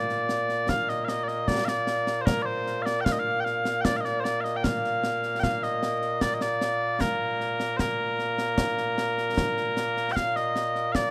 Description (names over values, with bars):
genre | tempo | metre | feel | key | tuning
scottish traditional, Scottish pipe music | 76 BPM | 3/4 | straight | Bb major | A4 = 440 Hz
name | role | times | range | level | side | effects
mellow small bagpipes | melody | 0.0-11.1 s | Bb2 to G5 | -28 LUFS | equal | none
concert snare drum and concert bass drum | drums | 0.1-11.1 s | none | -33 LUFS | equal | none
room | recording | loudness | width
light reverb | none | -27 LUFS | mono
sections
0.0-10.2 A section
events
none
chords
none